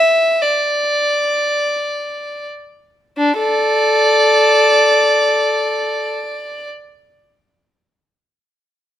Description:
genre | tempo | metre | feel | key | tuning
classical, baroque-style suite movement for unaccompanied violin | free time | none | none | unclear | A4 = 439 Hz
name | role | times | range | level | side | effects
rich violin | solo | 0.0-6.7 s | D4 to E5 | -13 LUFS | equal | none
room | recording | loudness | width
moderate stone room reverb, RT60 1.1 s | none | -13 LUFS | side -11 dB against mid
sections
0.0-3.2 A section; 3.2-7.4 B section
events
slowing down 0.0-3.2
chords
none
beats
free time

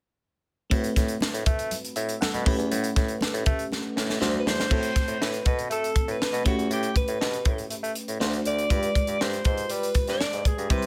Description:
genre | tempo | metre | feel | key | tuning
polished 1980s jazz-funk pop | 120 BPM | 4/4 | straight | A dorian | A4 = 440 Hz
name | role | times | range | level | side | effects
FM electric piano | accompaniment | 0.7-10.9 s | G3 to F#5 | -33 LUFS | equal | phaser, lush chorus
clear bassoon | bass | 0.7-10.9 s | D2 to A3 | -33 LUFS | equal | none
crisp fusion drum kit | drums | 0.7-10.9 s | crash cymbal, hi-hat, kick drum, snare drum | -28 LUFS | equal | none
congas | percussion | 0.7-4.6 s | none | -40 LUFS | equal | none
mellow alto saxophone | melody | 4.4-10.9 s | F#4 to D5 | -31 LUFS | equal | none
room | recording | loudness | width
light reverb, small room ambience | none | -26 LUFS | mono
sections
0.7-4.7 A section; 4.7-10.9 B section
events
drum fill 3.7-4.7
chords
0.7 Am69; 2.5 A9; 4.2 D7; 4.7 Am69; 6.5 A9; 8.2 D7; 8.7 G7b9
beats
| 0.71 1.21 1.71 2.21 | 2.71 3.21 3.71 4.21 | 4.71 5.21 5.71 6.21 | 6.71 7.21 7.71 8.21 | 8.71 9.20 9.70 10.20 | 10.70

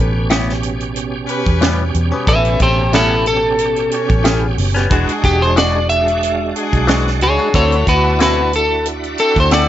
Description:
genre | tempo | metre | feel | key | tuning
straight-eighth soul blues | 91 BPM | 4/4 | swing 54% on 16ths | A mixolydian | A4 = 445 Hz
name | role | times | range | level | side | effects
electric guitar at the edge of break-up | melody | 0.0-9.7 s | E4 to E5 | -15 LUFS | left 1 dB | none
bright tonewheel organ | accompaniment | 0.0-9.7 s | B2 to G4 | -22 LUFS | right 5 dB | slow rotary speaker, chorus vibrato
clear horn section | sustained chords | 0.0-9.7 s | C4 to C#5 | -25 LUFS | left 2 dB | none
vintage muted fingered electric bass | bass | 0.0-9.7 s | E1 to E2 | -18 LUFS | equal | none
direct-recorded clean electric guitar | stabs | 0.3-9.7 s | A2 to F#4 | -21 LUFS | left 4 dB | phaser
tight funk drum kit | drums | 0.3-9.7 s | hi-hat, kick drum, snare drum | -19 LUFS | right 1 dB | none
room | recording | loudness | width
small room ambience | nothing above 7.7 kHz | -13 LUFS | side -12 dB against mid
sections
0.0-9.7 A section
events
clean electric guitar solo 0.0-9.7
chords
0.0 A9; 4.9 E9; 7.5 D9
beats
0.30 0.96 1.62 | 2.28 2.94 3.59 4.25 | 4.91 5.57 6.22 6.88 | 7.54 8.20 8.86 9.52

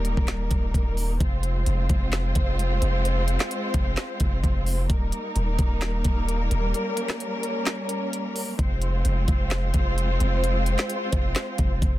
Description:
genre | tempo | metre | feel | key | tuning
hip hop, trap | 130 BPM | 4/4 | half-time | F minor | A4 = 440 Hz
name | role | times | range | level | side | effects
warm studio string section | sustained chords | 0.0-12.0 s | G3 to C5 | -28 LUFS | equal | plate reverb
long sustained 808-style bass | bass | 0.0-12.0 s | Eb1 to F1 | -24 LUFS | equal | none
trap drum kit | drums | 0.0-11.9 s | handclaps, hi-hat, kick drum, rim click, snare drum | -25 LUFS | equal | none
room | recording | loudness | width
little or no reverb | dense, heavily limited modern master | -22 LUFS | side -15 dB against mid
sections
0.0-1.2 A section; 1.2-12.0 B section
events
break 6.7-8.6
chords
0.0 Eb; 1.2 Fm; 4.9 Eb; 8.6 Fm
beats
0.28 0.74 | 1.21 1.67 2.13 2.59 | 3.05 3.51 3.97 4.43 | 4.90 5.36 5.82 6.28 | 6.74 7.21 7.67 8.13 | 8.59 9.05 9.51 9.97 | 10.44 10.90 11.36 11.82

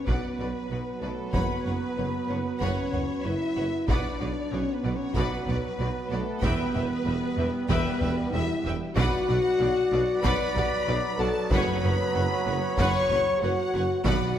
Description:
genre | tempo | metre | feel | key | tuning
cinematic, epic orchestral film score | 94 BPM | 4/4 | straight | B minor | A4 = 440 Hz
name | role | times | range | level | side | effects
rich symphonic violin section | melody | 0.0-14.4 s | A4 to C#6 | -36 LUFS | left 3 dB | none
bright trombone section | sustained chords | 0.0-14.4 s | F#3 to B3 | -36 LUFS | right 4 dB | none
mellow French horn section | sustained chords | 0.0-14.4 s | A3 to C#5 | -29 LUFS | left 2 dB | none
mellow trumpet | stabs | 0.0-14.4 s | B4 to D5 | -35 LUFS | right 1 dB | none
impact | sound effects | 0.0-1.3 s | none | barely audible | none | none
rich symphonic violin section | second line | 0.1-14.4 s | F#4 to B5 | -37 LUFS | left 2 dB | none
rich symphonic viola section | accompaniment | 0.1-14.4 s | B4 to E5 | -37 LUFS | equal | none
mellow tuba | bass | 0.1-14.4 s | E1 to B1 | -34 LUFS | right 2 dB | none
rich symphonic cello section | bass | 0.1-14.1 s | E2 to B2 | -34 LUFS | right 1 dB | none
rich symphonic double bass section | bass | 0.1-14.1 s | E1 to B1 | -34 LUFS | right 2 dB | none
taiko ensemble | drums | 0.1-14.4 s | none | -31 LUFS | equal | none
timpani | percussion | 11.5-14.4 s | F#2 to B2 | -32 LUFS | equal | none
room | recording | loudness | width
wet scoring stage reverb, RT60 1.7 s | none | -24 LUFS | side -10 dB against mid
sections
0.0-14.4 A section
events
impact 0.0-1.3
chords
0.0 Bm; 1.3 F#sus4; 3.9 Bm; 6.4 Em; 9.0 Bm; 11.5 F#sus4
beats
0.07 0.71 | 1.34 1.98 2.61 3.25 | 3.88 4.52 5.15 5.79 | 6.42 7.06 7.70 8.33 | 8.97 9.60 10.24 10.88 | 11.51 12.15 12.78 13.42 | 14.06

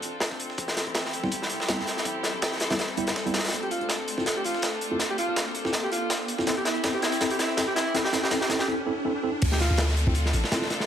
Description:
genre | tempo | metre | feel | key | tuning
drum and bass, jungle | 163 BPM | 4/4 | swing 54% on 16ths | D minor | A4 = 439 Hz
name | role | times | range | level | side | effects
clear studio string section | sustained chords | 0.0-10.9 s | C4 to A4 | -33 LUFS | left 1 dB | low-pass filter
crunchy breakbeat drum kit | drums | 0.0-10.9 s | crash cymbal, hi-hat, kick drum, snare drum | -28 LUFS | equal | high-pass filter on kick, high-pass filter on hats, high-pass filter on cymbals, high-pass filter on snare, high-pass filter on room
dusty soul sampler-style drum kit | drums | 0.0-10.8 s | hi-hat, snare drum | -36 LUFS | right 2 dB | none
riser and downlifter | sound effects | 0.0-10.9 s | none | -36 LUFS | equal | none
long sustained 808-style bass | bass | 0.6-10.4 s | E1 to D2 | -30 LUFS | equal | high-pass filter
tine electric piano | stabs | 1.2-10.6 s | G3 to A4 | -31 LUFS | right 1 dB | auto-pan, low-pass filter, dub echo
breathy alto saxophone | melody | 3.6-9.8 s | E4 to G4 | -31 LUFS | right 1 dB | low-pass filter, dub echo
room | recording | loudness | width
moderate echo chamber reverb, RT60 1.5 s | none | -24 LUFS | side -9 dB against mid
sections
0.0-9.4 A section; 9.4-10.9 B section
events
build-up 0.0-9.4; riser 0.0-9.4; filter sweep on alto saxophone 0.0-9.4; drum fill 3.5-8.7; break 8.7-9.4; drop 9.4-10.9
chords
0.0 Dm7; 0.6 Am7; 3.5 Dm7; 6.5 Am7; 9.4 Dm7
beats
0.22 | 0.58 0.95 1.32 1.69 | 2.06 2.42 2.79 3.16 | 3.53 3.90 4.26 4.63 | 5.00 5.37 5.74 6.11 | 6.47 6.84 7.21 7.58 | 7.95 8.31 8.68 9.05 | 9.42 9.79 10.15 10.52

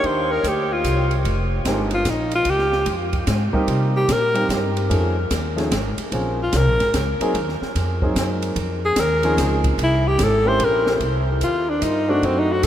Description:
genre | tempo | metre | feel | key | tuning
jazz, small-group swing and bop | 148 BPM | 3/4 | swing 66% on 8ths | F minor | A4 = 440 Hz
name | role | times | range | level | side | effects
bright alto saxophone | melody | 0.0-12.7 s | C4 to C5 | -21 LUFS | left 1 dB | none
warm concert grand piano | accompaniment | 0.0-12.6 s | F3 to G#4 | -25 LUFS | equal | none
upright bass | bass | 0.0-12.7 s | F1 to C3 | -23 LUFS | equal | none
open jazz drum kit | drums | 0.0-12.7 s | hi-hat, kick drum, ride cymbal, snare drum | -27 LUFS | equal | none
room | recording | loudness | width
wet huge ambient reverb, RT60 8.3 s | in a vast, echoing space | -17 LUFS | side -11 dB against mid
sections
0.0-1.2 A section; 1.2-11.0 B section; 11.0-12.7 A section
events
alto saxophone solo 1.2-11.0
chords
0.0 Cm7; 1.2 Fm11; 2.5 Db69; 3.7 Cm7; 4.9 F7alt; 6.1 Bbm9; 7.3 Ab9; 8.6 Dbmaj7; 9.8 C7b9; 11.0 Cm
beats
| 0.03 0.44 0.84 | 1.25 1.66 2.06 | 2.47 2.87 3.28 | 3.69 4.09 4.50 | 4.90 5.31 5.72 | 6.12 6.53 6.94 | 7.34 7.75 8.16 | 8.56 8.97 9.38 | 9.78 10.19 10.60 | 11.01 11.41 11.82 | 12.23 12.63

